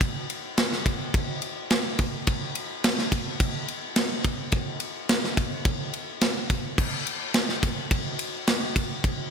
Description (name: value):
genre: metal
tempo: 106 BPM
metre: 4/4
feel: straight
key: none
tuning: none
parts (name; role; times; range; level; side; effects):
- tight metal drum kit; drums; 0.0-9.2 s; crash cymbal, kick drum, ride cymbal, snare drum; -24 LUFS; equal; none
room: moderate lush hall reverb, RT60 2.3 s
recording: none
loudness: -24 LUFS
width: side -6 dB against mid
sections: 0.0-9.3 A section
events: none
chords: none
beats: | 0.01 0.58 1.14 1.71 | 2.27 2.84 3.40 3.97 | 4.53 5.09 5.66 6.22 | 6.79 7.35 7.92 8.48 | 9.04